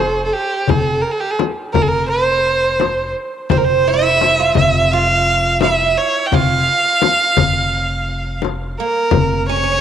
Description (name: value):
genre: Arabic maqam ensemble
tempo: 85 BPM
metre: 4/4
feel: straight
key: F maqam suznak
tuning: A4 = 440 Hz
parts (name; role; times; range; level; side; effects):
- bright violin; melody; 0.0-9.8 s; G4 to G5; -15 LUFS; right 2 dB; none
- upright bass; bass; 0.0-9.8 s; F1; -21 LUFS; equal; none
- darbuka; percussion; 0.7-9.3 s; none; -22 LUFS; left 9 dB; none
- frame drum; percussion; 0.7-9.3 s; none; -19 LUFS; left 6 dB; none
- oud; second line; 3.5-9.8 s; Bb3 to F4; -21 LUFS; right 10 dB; none
room: wet spring reverb, RT60 2.8 s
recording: 1960s-style stereo with parts hard left and right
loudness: -13 LUFS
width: side -9 dB against mid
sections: 0.0-9.1 A section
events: none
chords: none